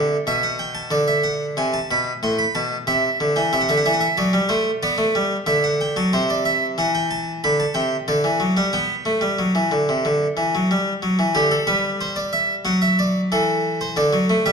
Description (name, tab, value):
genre	classical, baroque-style two-part invention for harpsichord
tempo	92 BPM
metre	4/4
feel	straight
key	G major from 6.1 s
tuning	A4 = 442 Hz
part	harpsichord	solo	0.0-14.5 s	A2 to C6	-18 LUFS	equal	none
room	wet recital hall reverb, RT60 1.5 s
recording	dark, warm production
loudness	-18 LUFS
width	side -5 dB against mid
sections	0.9-11.4 A section; 11.4-14.5 B section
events	none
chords	0.0 G/B; 0.9 E7/D; 2.2 Am; 3.5 D7/C; 4.8 G5; 6.1 C; 7.4 G/D; 8.1 D; 8.7 G5; 11.4 G/D; 12.7 D/F#; 14.0 D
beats	0.28 | 0.94 1.59 2.24 2.88 | 3.53 4.17 4.82 5.47 | 6.11 6.76 7.41 8.07 | 8.72 9.39 10.05 10.71 | 11.37 12.02 12.67 13.32 | 13.98